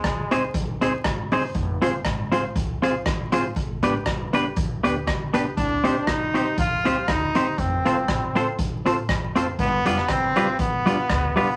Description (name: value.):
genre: ska.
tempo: 119 BPM.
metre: 4/4.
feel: swing 54% on 8ths.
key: unclear.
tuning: A4 = 439 Hz.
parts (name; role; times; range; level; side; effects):
brilliant trombone; melody; 0.0-0.6, 5.6-11.6 s; Ab3 to F4; -26 LUFS; equal; none.
upright bass; bass; 0.0-11.6 s; F1 to D2; -34 LUFS; equal; none.
street-band drum kit; drums; 0.0-11.5 s; hi-hat, kick drum, rim click; -29 LUFS; equal; none.
semi-hollow electric guitar; accompaniment; 0.3-11.5 s; G3 to C5; -25 LUFS; equal; none.
mellow tonewheel organ; stabs; 0.3-11.5 s; B3 to C5; -33 LUFS; equal; chorus vibrato, fast rotary speaker.
room: wet club reverb, RT60 0.5 s.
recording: vinyl crackle.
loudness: -23 LUFS.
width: mono.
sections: 0.0-11.6 A section.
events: none.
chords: 0.0 Ab; 1.6 Fm; 3.6 G; 5.6 Cm; 7.6 F; 9.6 G7.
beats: 0.04 0.54 1.05 | 1.55 2.05 2.56 3.06 | 3.56 4.06 4.57 5.07 | 5.57 6.07 6.58 7.08 | 7.58 8.08 8.59 9.09 | 9.59 10.09 10.60 11.10.